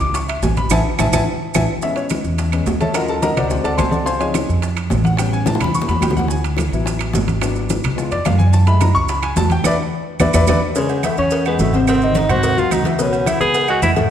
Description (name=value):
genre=Afro-Cuban jazz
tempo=215 BPM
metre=4/4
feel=straight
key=unclear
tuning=A4 = 440 Hz
part: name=warm baby grand piano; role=accompaniment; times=0.0-14.1 s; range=A2 to D6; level=-20 LUFS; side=left 2 dB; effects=none
part: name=upright bass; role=bass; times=0.0-14.1 s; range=G#1 to G#2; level=-19 LUFS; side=right 1 dB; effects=none
part: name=maracas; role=percussion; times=0.0-14.1 s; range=none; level=-32 LUFS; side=right 8 dB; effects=none
part: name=bongos and cowbell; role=percussion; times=0.1-14.1 s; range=none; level=-25 LUFS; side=left 3 dB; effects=none
part: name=timbales and agogo bells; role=percussion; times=0.1-14.1 s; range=none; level=-26 LUFS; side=right 6 dB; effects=none
part: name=congas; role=percussion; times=0.2-14.1 s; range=none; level=-24 LUFS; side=left 1 dB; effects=none
part: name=claves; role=percussion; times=0.3-13.8 s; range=none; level=-30 LUFS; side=right 8 dB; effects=none
part: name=warm tenor saxophone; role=melody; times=10.8-13.9 s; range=G#3 to G#4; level=-19 LUFS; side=equal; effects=none
room=moderate scoring stage reverb, RT60 1.6 s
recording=recorded in a church or concert hall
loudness=-15 LUFS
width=side -9 dB against mid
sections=0.0-1.8 A section; 1.8-10.8 A section; 10.8-14.1 A section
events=grand piano solo 0.0-10.8; band accent 0.7-1.8, 9.7-10.8; drum fill 1.1-1.8, 5.5-6.3, 9.7-10.8; tenor saxophone solo 10.8-14.1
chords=0.0 Amaj7; 1.8 Amaj9; 3.0 D#m7; 3.5 D7#11; 4.1 C#maj7; 5.2 A7; 6.3 D6; 7.4 G#m7b5; 8.0 C#7; 8.5 F#m7; 9.7 E5; 10.8 C#mmaj7; 11.9 G#7; 13.0 C#m7